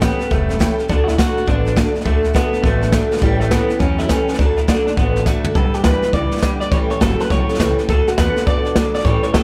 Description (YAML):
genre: rockabilly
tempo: 206 BPM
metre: 4/4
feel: swing 63% on 8ths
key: D major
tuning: A4 = 440 Hz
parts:
  - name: electric guitar through a small old amp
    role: melody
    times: 0.0-9.4 s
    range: G3 to D5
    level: -25 LUFS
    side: equal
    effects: analog delay
  - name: picked steel-string acoustic guitar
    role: accompaniment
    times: 0.0-9.4 s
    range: A2 to B4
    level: -24 LUFS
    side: equal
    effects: none
  - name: upright bass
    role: bass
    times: 0.0-9.4 s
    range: E1 to B2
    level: -23 LUFS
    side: equal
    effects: none
  - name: jazz brush drum kit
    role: drums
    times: 0.0-9.4 s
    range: hi-hat, kick drum, snare drum, toms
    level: -20 LUFS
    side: equal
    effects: none
  - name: electric guitar through a small old amp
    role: riff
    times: 0.9-9.4 s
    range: G2 to B3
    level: -27 LUFS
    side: equal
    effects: ensemble chorus
room: studio ambience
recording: none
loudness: -17 LUFS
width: mono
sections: 0.0-5.6 A section; 5.6-9.4 B section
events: drum fill 5.3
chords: 0.0 A7; 0.9 D; 3.2 A7; 4.4 D; 5.6 G; 6.7 A7; 7.9 D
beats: 0.02 0.31 0.60 | 0.89 1.18 1.48 1.77 | 2.06 2.35 2.64 2.93 | 3.22 3.52 3.81 4.10 | 4.39 4.68 4.97 5.26 | 5.56 5.85 6.14 6.43 | 6.72 7.01 7.31 7.60 | 7.89 8.18 8.47 8.76 | 9.05 9.35